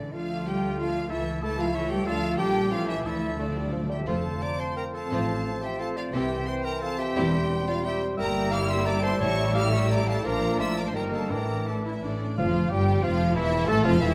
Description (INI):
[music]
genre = classical, dramatic, fast romantic movement for symphony orchestra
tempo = 164-190 BPM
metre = 3/4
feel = rubato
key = D minor, F major from 4.1 s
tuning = A4 = 435 Hz
[part]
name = clear symphonic violin section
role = melody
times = 0.0-14.1 s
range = D5 to F6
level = -39 LUFS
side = equal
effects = none
[part]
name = clear clarinet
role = second line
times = 0.0-14.1 s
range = D4 to F5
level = -36 LUFS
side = equal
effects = none
[part]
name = silver concert flute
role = second line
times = 0.0-14.1 s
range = D5 to D6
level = -38 LUFS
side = equal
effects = none
[part]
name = warm symphonic viola section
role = accompaniment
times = 0.0-14.1 s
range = D3 to D4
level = -37 LUFS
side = equal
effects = none
[part]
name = warm French horn section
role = sustained chords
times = 0.0-14.1 s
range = Eb3 to A4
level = -37 LUFS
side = equal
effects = none
[part]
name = rich symphonic double bass section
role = bass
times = 0.0-14.1 s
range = E1 to D2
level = -33 LUFS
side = equal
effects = none
[part]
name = warm symphonic cello section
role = bass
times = 0.0-14.1 s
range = E2 to A3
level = -34 LUFS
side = equal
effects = none
[part]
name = mellow cor anglais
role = second line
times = 0.1-14.1 s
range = D4 to E5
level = -39 LUFS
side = equal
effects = none
[part]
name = warm symphonic violin section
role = second line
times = 0.1-14.1 s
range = A3 to C5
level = -39 LUFS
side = equal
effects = none
[part]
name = timpani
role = percussion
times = 3.1-5.6, 9.2-12.8 s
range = A2 to D3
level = -38 LUFS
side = equal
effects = none
[part]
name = mellow bassoon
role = accompaniment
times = 3.4-14.1 s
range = Eb3 to A3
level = -35 LUFS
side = equal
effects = none
[sound]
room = wet recital hall reverb, RT60 1.5 s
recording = none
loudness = -26 LUFS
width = mono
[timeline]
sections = 0.0-4.1 A section; 4.1-12.4 B section; 12.4-14.1 C section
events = timpani fill 3.0-4.1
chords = 0.1 Dm; 1.1 A/C#; 2.1 Dm; 2.4 Gm/Bb; 2.7 A; 3.0 Dm; 4.1 F; 5.1 F/A; 6.1 C; 7.2 C/E; 8.2 Edim/G; 9.2 A7; 10.2 Bb; 10.9 Eb/G; 11.3 Asus4; 12.0 A; 12.4 Fsus2; 13.4 A5/E